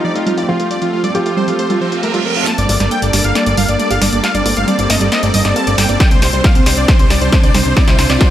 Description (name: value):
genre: uplifting trance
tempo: 136 BPM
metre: 4/4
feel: straight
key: G minor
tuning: A4 = 441 Hz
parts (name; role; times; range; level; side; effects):
- dense compressed supersaw; melody; 0.0-8.3 s; F4 to A5; -18 LUFS; equal; cassette tape, sidechain pumping, tape echo
- felt-muted upright piano; second line; 0.0-2.4 s; Eb4 to G4; -21 LUFS; equal; tape echo
- supersaw pad; sustained chords; 0.0-8.3 s; F3 to C5; -20 LUFS; equal; sidechain pumping
- wide unison pluck; arpeggios; 0.0-8.2 s; F3 to C5; -21 LUFS; right 2 dB; sidechain pumping, tape echo
- techno drum kit; drums; 0.2-8.3 s; congas, hi-hat, snare drum; -19 LUFS; left 1 dB; overdrive, high-pass filter on hats, low-pass filter on hats, high-pass filter on snare, low-pass filter on snare, high-pass filter on perc, low-pass filter on perc
- reverse cymbal and riser; sound effects; 1.8-8.3 s; none; -24 LUFS; right 3 dB; none
- fat analog bass; bass; 2.6-8.2 s; G1 to C2; -17 LUFS; equal; sidechain pumping
- electronic kick drum; drums; 6.0-8.3 s; none; -10 LUFS; equal; overdrive
room: light reverb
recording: none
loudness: -11 LUFS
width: side -12 dB against mid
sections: 0.0-2.5 A section; 2.5-8.3 B section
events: filter sweep on synth arpeggio sound 0.0-2.5, 2.5-8.3; reverse cymbal 1.8-2.5; build-up 2.5-8.3; drum fill 2.5-8.3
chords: 0.0 Fadd9; 2.5 Gmadd9; 6.0 Csus2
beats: 0.27 | 0.71 1.15 1.59 2.03 | 2.47 2.91 3.35 3.80 | 4.24 4.68 5.12 5.56 | 6.00 6.44 6.88 7.33 | 7.77 8.21